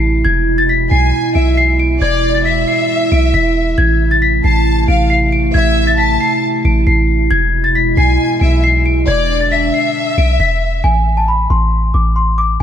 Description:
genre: hip hop.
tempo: 136 BPM.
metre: 4/4.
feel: half-time.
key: A harmonic minor.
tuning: A4 = 441 Hz.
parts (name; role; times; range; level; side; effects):
celesta; melody; 0.0-12.6 s; G#5 to D7; -17 LUFS; left 3 dB; ping-pong delay.
dark analog pad; sustained chords; 0.0-10.8 s; B2 to E4; -17 LUFS; right 2 dB; wide subtle chorus.
warm 808-style bass; bass; 0.0-12.6 s; E1 to B1; -14 LUFS; equal; none.
warm studio violin section; second line; 0.9-10.8 s; D5 to A5; -19 LUFS; left 1 dB; ping-pong delay.
room: light reverb, small room ambience.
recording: none.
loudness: -11 LUFS.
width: side -9 dB against mid.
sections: 0.0-10.8 A section; 10.8-12.6 B section.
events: none.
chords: 0.3 E; 3.8 Am; 7.3 E; 10.8 Am.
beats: | 0.25 0.69 1.13 1.57 | 2.02 2.46 2.90 3.34 | 3.78 4.22 4.66 5.10 | 5.54 5.99 6.43 6.87 | 7.31 7.75 8.19 8.63 | 9.07 9.52 9.96 10.40 | 10.84 11.28 11.72 12.16 | 12.60.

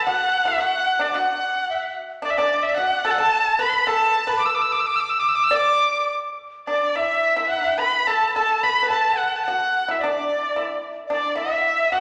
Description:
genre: chinese traditional, Chinese chamber ensemble.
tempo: 110 BPM.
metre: 4/4.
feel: rubato.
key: D gong mode.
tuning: A4 = 441 Hz.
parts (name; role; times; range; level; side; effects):
clear erhu; melody; 0.0-12.0 s; D5 to E6; -23 LUFS; equal; none.
dizi; second line; 0.0-12.0 s; D5 to D6; -28 LUFS; equal; none.
pipa; second line; 0.0-12.0 s; D4 to D5; -29 LUFS; equal; none.
room: wet recital hall reverb, RT60 1.7 s.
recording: none.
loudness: -21 LUFS.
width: mono.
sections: 0.0-6.7 A section; 6.7-12.0 B section.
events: none.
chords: none.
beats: | 0.05 0.60 1.15 1.69 | 2.24 2.78 3.32 3.86 | 4.41 4.96 5.52 6.10 | 6.67 7.23 7.79 8.36 | 8.91 9.46 10.01 10.56 | 11.10 11.64.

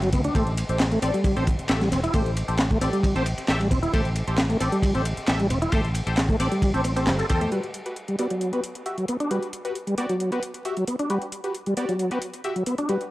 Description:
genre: breakbeat, breaks.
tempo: 134 BPM.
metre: 4/4.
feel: straight.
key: unclear.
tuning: A4 = 440 Hz.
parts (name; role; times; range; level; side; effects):
tonewheel organ; riff; 0.0-13.0 s; F#3 to A4; -26 LUFS; equal; chorus vibrato, fast rotary speaker, vintage 12-bit sampler grit, low-pass filter, tape echo.
fingered electric bass; bass; 0.0-7.4 s; E1 to E2; -26 LUFS; equal; none.
crunchy breakbeat drum kit; drums; 0.0-7.4 s; kick drum, ride cymbal, snare drum; -26 LUFS; equal; none.
garage drum kit; drums; 0.0-13.1 s; handclaps, hi-hat; -34 LUFS; equal; none.
band-passed chord stab; stabs; 0.4-13.1 s; F#4 to E5; -30 LUFS; left 1 dB; phaser, tape echo.
room: light reverb, studio reverb.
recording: dry, gritty hardware recording, transformer saturation, vinyl crackle.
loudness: -22 LUFS.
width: side -17 dB against mid.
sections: 0.0-7.5 A section; 7.5-13.1 B section.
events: filter sweep on synth stab 7.5-13.1.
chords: 0.4 Am7; 7.5 Gmaj7.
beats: | 0.35 0.80 1.25 1.70 | 2.14 2.59 3.04 3.49 | 3.94 4.38 4.83 5.28 | 5.73 6.17 6.62 7.07 | 7.52 7.96 8.41 8.86 | 9.31 9.76 10.20 10.65 | 11.10 11.55 11.99 12.44 | 12.89.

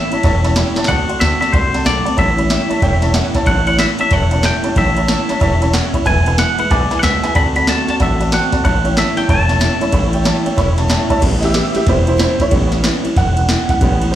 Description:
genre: rockabilly.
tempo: 186 BPM.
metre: 4/4.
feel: swing 63% on 8ths.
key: A mixolydian.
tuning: A4 = 440 Hz.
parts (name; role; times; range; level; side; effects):
twangy electric guitar; melody; 0.0-10.9 s; C5 to B5; -19 LUFS; left 1 dB; slapback echo, digital delay.
honky-tonk upright piano; accompaniment; 0.0-14.2 s; G3 to C6; -20 LUFS; right 2 dB; slapback echo.
picked steel-string acoustic guitar; accompaniment; 0.0-14.2 s; E2 to F#4; -22 LUFS; left 2 dB; slapback echo.
upright bass; bass; 0.1-14.2 s; E1 to D2; -18 LUFS; equal; none.
soft vintage rhythm box; drums; 0.1-14.1 s; crash cymbal, kick drum, ride cymbal, snare drum; -17 LUFS; equal; overdrive.
room: little or no reverb.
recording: live gig heard through the venue's PA, club reverb.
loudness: -12 LUFS.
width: side -12 dB against mid.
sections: 0.0-11.2 A section; 11.2-14.2 B section.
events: drum fill 0.7; honky-tonk piano solo 11.2-14.2.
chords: 0.0 A7; 0.9 D7; 2.2 A7; 6.1 E7; 7.4 D7; 8.6 A7.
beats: 0.24 0.56 | 0.88 1.21 1.53 1.85 | 2.18 2.50 2.83 3.15 | 3.47 3.79 4.12 4.44 | 4.76 5.09 5.41 5.74 | 6.06 6.38 6.70 7.03 | 7.35 7.67 8.00 8.32 | 8.64 8.97 9.29 9.61 | 9.94 10.26 10.58 10.91 | 11.23 11.55 11.87 12.20 | 12.52 12.84 13.17 13.49 | 13.81 14.13.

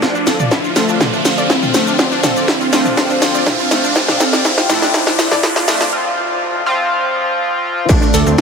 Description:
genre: melodic techno.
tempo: 122 BPM.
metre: 4/4.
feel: straight.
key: unclear.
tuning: A4 = 440 Hz.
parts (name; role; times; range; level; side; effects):
wide unison lead; melody; 0.0-8.4 s; A3 to F4; -20 LUFS; right 1 dB; ensemble chorus, sidechain pumping, tape echo.
dark analog pad; sustained chords; 0.7-8.4 s; D4 to E6; -27 LUFS; right 1 dB; chorus, phaser, sidechain pumping.
wide unison pluck; arpeggios; 0.0-8.4 s; A3 to D5; -21 LUFS; equal; sidechain pumping, tape echo.
sync-sweep polysynth; stabs; 0.0-8.4 s; D3 to F4; -19 LUFS; left 1 dB; chorus, sidechain pumping, tape echo.
electronic kick drum; drums; 0.0-8.4 s; none; -19 LUFS; equal; none.
techno drum kit; drums; 0.0-8.4 s; crash cymbal, hi-hat, shaker, snare drum, toms; -17 LUFS; equal; sidechain pumping on hats, sidechain pumping on perc, sidechain pumping on toms, sidechain pumping on cymbals.
riser; sound effects; 0.0-5.9 s; none; -20 LUFS; equal; none.
damped 70s drum kit; drums; 7.9-8.4 s; hi-hat, snare drum; -28 LUFS; left 5 dB; none.
swelling detuned saw bass; bass; 8.1-8.4 s; D2; -15 LUFS; equal; sidechain pumping.
room: moderate huge ambient reverb, RT60 8.4 s.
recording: high-pass filter.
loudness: -12 LUFS.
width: side -5 dB against mid.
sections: 0.0-7.9 A section.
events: build-up 0.0-7.9; drum fill 0.0-5.9; riser 0.0-5.9; filter sweep on analog polysynth 0.0-7.9; filter sweep on analog synth pad 0.0-7.9; break 5.9-7.9.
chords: 0.0 F6; 7.9 Dsus2.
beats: | 0.02 0.52 1.01 1.50 | 1.99 2.48 2.97 3.47 | 3.96 4.45 4.94 5.43 | 5.92 6.42 6.91 7.40 | 7.89 8.38.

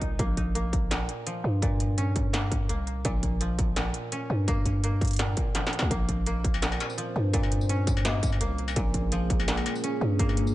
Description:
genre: half-time drum and bass.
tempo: 168 BPM.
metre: 4/4.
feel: swing 53% on 16ths, half-time.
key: Bb dorian.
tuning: A4 = 440 Hz.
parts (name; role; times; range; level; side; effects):
koto; arpeggios; 0.0-10.5 s; Bb2 to Eb4; -34 LUFS; right 1 dB; low-pass filter, digital delay.
growling 808-style bass; bass; 0.0-10.5 s; Bb1 to G2; -28 LUFS; equal; none.
electronic kick drum; drums; 0.0-10.3 s; none; -29 LUFS; equal; distortion.
industrial drum kit; drums; 0.0-10.5 s; hi-hat, snare drum, struck metal, tambourine; -32 LUFS; left 1 dB; none.
dark analog pad; sustained chords; 5.9-10.5 s; Bb3 to C5; -34 LUFS; equal; chorus, sidechain pumping.
room: little or no reverb.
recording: nothing above 10.3 kHz.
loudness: -25 LUFS.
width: side -16 dB against mid.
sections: 0.0-10.5 A section.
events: drum fill 5.5-5.9.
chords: 0.0 Bbmadd9.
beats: | 0.19 0.55 0.91 1.26 | 1.62 1.98 2.34 2.69 | 3.05 3.41 3.77 4.12 | 4.48 4.84 5.19 5.55 | 5.91 6.26 6.62 6.98 | 7.34 7.69 8.05 8.41 | 8.77 9.12 9.48 9.84 | 10.19.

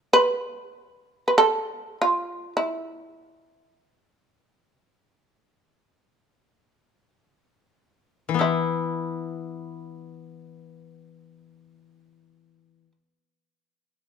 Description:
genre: japanese traditional, Japanese chamber music.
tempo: free time.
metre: none.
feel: none.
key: unclear.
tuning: A4 = 440 Hz.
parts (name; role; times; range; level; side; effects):
shamisen; melody; 0.1-12.9 s; E4 to B4; -20 LUFS; right 1 dB; none.
koto; accompaniment; 8.3-12.9 s; E3 to E4; -27 LUFS; left 7 dB; none.
room: moderate recital hall reverb, RT60 1.6 s.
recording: close, detailed microphones.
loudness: -22 LUFS.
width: side -6 dB against mid.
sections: 0.0-8.4 A section; 8.4-14.1 B section.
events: slowing down 0.0-8.4.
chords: none.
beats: free time.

